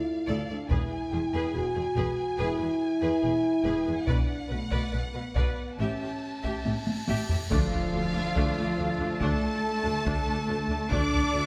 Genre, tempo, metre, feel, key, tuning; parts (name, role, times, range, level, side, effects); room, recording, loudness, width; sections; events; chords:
cinematic, epic orchestral film score; 71 BPM; 4/4; straight; D minor from 7.5 s; A4 = 436 Hz
warm symphonic violin section; melody; 0.0-11.5 s; F5 to D6; -39 LUFS; equal
dark French horn section; sustained chords; 0.0-11.5 s; F3 to F#4; -33 LUFS; equal
rich symphonic violin section; second line; 0.3-11.5 s; F4 to E5; -40 LUFS; equal
clear symphonic viola section; accompaniment; 0.3-11.4 s; A3 to B4; -39 LUFS; equal
rich studio cello section; bass; 0.3-11.5 s; D2 to D4; -37 LUFS; equal
rich symphonic double bass section; bass; 0.3-11.4 s; E1 to D2; -36 LUFS; equal
taiko ensemble; drums; 0.7-11.5 s; -33 LUFS; equal
cymbal swell and impact; sound effects; 6.6-10.9 s; -42 LUFS; equal
mellow woodwind section; sustained chords; 7.5-11.5 s; A3 to D5; -40 LUFS; equal
mellow tuba; bass; 7.5-11.4 s; D2; -39 LUFS; equal
moderate concert hall reverb, RT60 2.0 s; -28 LUFS; mono
0.0-7.5 A section; 7.5-11.5 B section
cymbal swell 6.6-7.5; drum fill 6.7-7.5; impact 7.5-10.9
0.0 Dm; 0.7 E; 4.1 Bm; 5.8 A7; 7.5 Dm